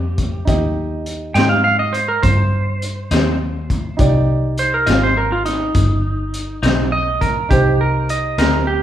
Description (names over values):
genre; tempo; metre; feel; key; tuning
slow blues; 68 BPM (dotted quarters); 12/8; straight; C minor; A4 = 440 Hz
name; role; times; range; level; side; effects
clean lap steel guitar; second line; 0.0-8.8 s; Eb4 to G5; -18 LUFS; right 3 dB; none
warm upright piano; accompaniment; 0.0-8.8 s; Eb4 to Eb5; -24 LUFS; right 2 dB; none
vintage muted fingered electric bass; bass; 0.0-8.8 s; G1 to Ab2; -19 LUFS; equal; none
crunchy breakbeat drum kit; drums; 0.2-8.5 s; hi-hat, kick drum, snare drum; -20 LUFS; left 1 dB; none
electric guitar through a small old amp; accompaniment; 1.4-8.6 s; C3 to Eb4; -23 LUFS; left 2 dB; tremolo
room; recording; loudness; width
moderate large studio reverb, RT60 1.2 s; band playing live in one room; -15 LUFS; side -11 dB against mid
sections
0.0-8.8 A section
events
electric slide guitar solo 0.0-8.8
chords
0.0 Cm